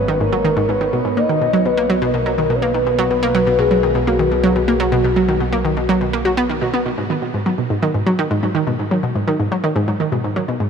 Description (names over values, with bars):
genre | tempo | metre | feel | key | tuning
ambient, sequencer-driven space music | 124 BPM | 4/4 | straight | G# minor | A4 = 440 Hz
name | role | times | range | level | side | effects
soft octave-layered synth lead | melody | 0.0-6.5 s | F#4 to D#5 | -19 LUFS | left 1 dB | chorus, phaser, shimmer reverb, tape echo
analog pluck | riff | 0.0-10.7 s | G#2 to F#4 | -17 LUFS | right 1 dB | chorus, shimmer reverb, tape echo
fat analog bass | bass | 0.0-7.0 s | G#1 to B1 | -26 LUFS | right 1 dB | none
room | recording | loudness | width
wet huge ambient reverb, RT60 7.8 s | none | -15 LUFS | side -6 dB against mid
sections
0.0-7.0 A section; 7.0-10.7 B section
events
none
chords
0.0 G#m; 1.2 B; 7.0 G#m